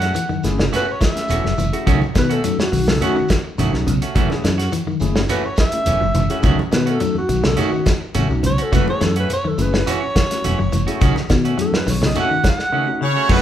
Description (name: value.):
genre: afrobeat.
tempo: 105 BPM.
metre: 4/4.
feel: straight.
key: unclear.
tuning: A4 = 442 Hz.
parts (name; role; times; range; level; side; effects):
breathy alto saxophone; melody; 0.0-13.0 s; F#4 to F#5; -22 LUFS; equal; none.
semi-hollow electric guitar; arpeggios; 0.0-13.4 s; C#3 to F#3; -24 LUFS; left 5 dB; none.
semi-hollow electric guitar; stabs; 0.0-13.4 s; D#3 to F#4; -25 LUFS; right 4 dB; none.
fingered electric bass; bass; 0.0-13.4 s; E1 to B2; -21 LUFS; equal; none.
warm soul drum kit; drums; 0.0-13.4 s; crash cymbal, hi-hat, kick drum, snare drum; -20 LUFS; equal; none.
shekere; percussion; 0.0-13.4 s; none; -32 LUFS; right 1 dB; none.
congas; percussion; 0.2-13.4 s; none; -26 LUFS; right 2 dB; none.
tine electric piano; accompaniment; 0.4-13.0 s; A3 to G#4; -28 LUFS; left 3 dB; overdrive, phaser.
clear horn section; melody; 13.0-13.4 s; B4 to C#5; -18 LUFS; right 3 dB; none.
clear trombone; second line; 13.0-13.4 s; B3 to C#4; -26 LUFS; right 4 dB; none.
edgy baritone saxophone; second line; 13.0-13.4 s; B2 to C#3; -25 LUFS; left 3 dB; none.
room: moderate large studio reverb, RT60 0.9 s.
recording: band playing live in one room.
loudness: -16 LUFS.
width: side -10 dB against mid.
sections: 0.0-13.3 A section.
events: alto saxophone solo 0.0-13.3.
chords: 0.0 F#m7; 1.9 B9; 4.2 F#m7; 6.4 B9; 8.7 F#m7; 11.0 B9.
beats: 0.15 0.72 1.29 | 1.86 2.44 3.01 3.58 | 4.15 4.72 5.30 5.87 | 6.44 7.01 7.58 8.15 | 8.73 9.30 9.87 10.44 | 11.01 11.58 12.15 12.72 | 13.29.